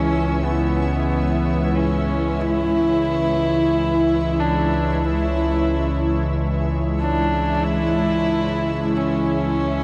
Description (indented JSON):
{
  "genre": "dark ambient drone",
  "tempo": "46 BPM",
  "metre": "4/4",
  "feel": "straight",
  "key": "C# phrygian",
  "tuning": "A4 = 441 Hz",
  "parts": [
    { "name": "clear horsehead fiddle", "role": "melody", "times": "0.0-9.8 s", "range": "B3 to E4", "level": "-25 LUFS", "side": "equal", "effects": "shimmer reverb, diffuse ambient delay" },
    { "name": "granular cloud pad", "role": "sustained chords", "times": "0.0-9.8 s", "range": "G#3 to E5", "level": "-28 LUFS", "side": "equal", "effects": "built-in reverb, shimmer reverb" },
    { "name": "analog drone", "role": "drone", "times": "0.0-9.8 s", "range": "C#2 to E3", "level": "-24 LUFS", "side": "equal", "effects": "chorus" }
  ],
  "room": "wet huge ambient reverb, RT60 7.5 s",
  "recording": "dark, warm production",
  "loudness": "-20 LUFS",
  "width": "mono",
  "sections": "0.0-9.8 A section",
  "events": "none",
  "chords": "0.0 C#m"
}